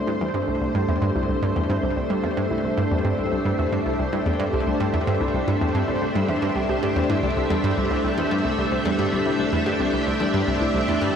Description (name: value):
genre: ambient, sequencer-driven space music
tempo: 111 BPM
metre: 4/4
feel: straight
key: unclear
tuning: A4 = 437 Hz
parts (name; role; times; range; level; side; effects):
- string machine, full ensemble; sustained chords; 0.0-11.2 s; A3 to E5; -23 LUFS; equal; ensemble chorus
- wide unison pluck; arpeggios; 0.0-11.1 s; G3 to E5; -30 LUFS; left 2 dB; auto-pan, ping-pong delay
- analog pluck; riff; 0.1-11.1 s; C2 to G2; -25 LUFS; equal; chorus, ping-pong delay
room: wet huge ambient reverb, RT60 8.8 s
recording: none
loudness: -20 LUFS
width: side -7 dB against mid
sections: 0.0-11.2 A section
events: none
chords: 0.0 C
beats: 0.21 | 0.75 1.29 1.83 2.37 | 2.91 3.45 3.99 4.53 | 5.07 5.61 6.15 6.69 | 7.23 7.78 8.32 8.86 | 9.40 9.94 10.48 11.02